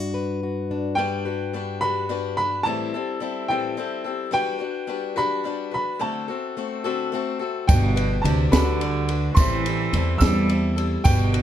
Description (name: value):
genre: indie folk with a building arrangement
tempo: 72 BPM (dotted quarters)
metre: 6/8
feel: straight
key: G major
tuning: A4 = 441 Hz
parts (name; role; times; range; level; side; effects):
- fingerpicked plugged-in steel-string acoustic guitar; accompaniment; 0.0-2.7 s; G2 to B4; -28 LUFS; left 2 dB; none
- clear upright piano; melody; 1.0-11.4 s; G5 to E6; -27 LUFS; right 1 dB; none
- picked swing-style acoustic guitar; accompaniment; 1.0-11.4 s; A2 to B4; -27 LUFS; left 7 dB; none
- rich cello; second line; 7.7-11.4 s; B2 to G3; -25 LUFS; right 4 dB; none
- upright bass; bass; 7.7-11.4 s; G1 to E2; -22 LUFS; right 1 dB; none
- compact cocktail drum kit; drums; 7.7-11.4 s; kick drum, ride cymbal, snare drum; -21 LUFS; right 1 dB; none
- tambourine; percussion; 7.7-11.2 s; none; -37 LUFS; right 7 dB; none
room: light reverb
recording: dark, warm production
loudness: -21 LUFS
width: side -10 dB against mid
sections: 1.0-11.4 A section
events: none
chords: 0.0 Gmaj7; 2.7 Am7; 4.3 Gmaj7; 6.0 D7; 7.7 Gmaj7; 9.4 Am7